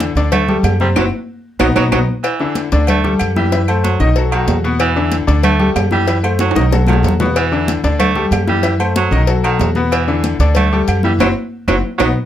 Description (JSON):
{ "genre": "latin, salsa", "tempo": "187 BPM", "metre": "4/4", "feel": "straight", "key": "E minor", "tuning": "A4 = 440 Hz", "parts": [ { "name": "breathy baritone saxophone", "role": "second line", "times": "0.0-12.1 s", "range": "D#3 to A3", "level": "-19 LUFS", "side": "right 5 dB", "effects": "none" }, { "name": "bright concert grand piano", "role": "accompaniment", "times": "0.0-12.1 s", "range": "B2 to E5", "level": "-18 LUFS", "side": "left 4 dB", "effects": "none" }, { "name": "upright bass", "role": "bass", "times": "0.0-12.1 s", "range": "F#1 to F#2", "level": "-16 LUFS", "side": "equal", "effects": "none" }, { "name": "agogo bells and timbales", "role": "percussion", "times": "0.0-12.1 s", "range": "none", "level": "-23 LUFS", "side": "right 6 dB", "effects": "none" }, { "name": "congas", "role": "percussion", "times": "0.0-12.1 s", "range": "none", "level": "-22 LUFS", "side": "left 1 dB", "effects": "none" }, { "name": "cowbell and bongos", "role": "percussion", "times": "0.0-12.1 s", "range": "none", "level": "-24 LUFS", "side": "left 5 dB", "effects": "none" }, { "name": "claves", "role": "percussion", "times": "0.3-12.1 s", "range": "none", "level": "-28 LUFS", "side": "left 7 dB", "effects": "none" } ], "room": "light reverb", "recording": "none", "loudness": "-12 LUFS", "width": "side -11 dB against mid", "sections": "0.0-2.2 A section; 2.2-12.3 A section", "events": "band accent 1.0-2.2, 11.2-12.3; drum fill 1.6-2.2, 6.4-7.4, 11.7-12.3", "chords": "0.3 Dsus4; 1.0 Esus2/F#; 1.6 B; 2.2 Dsus2; 2.9 Dsus4; 3.5 F#m7b5; 4.2 B7; 4.8 E5; 5.4 Dsus4; 6.1 F#m7b5; 6.7 B7; 7.4 E5; 8.0 Dsus4; 8.6 F#m7b5; 9.3 B7; 9.9 E5; 10.6 Dsus4; 11.2 Esus2/F#" }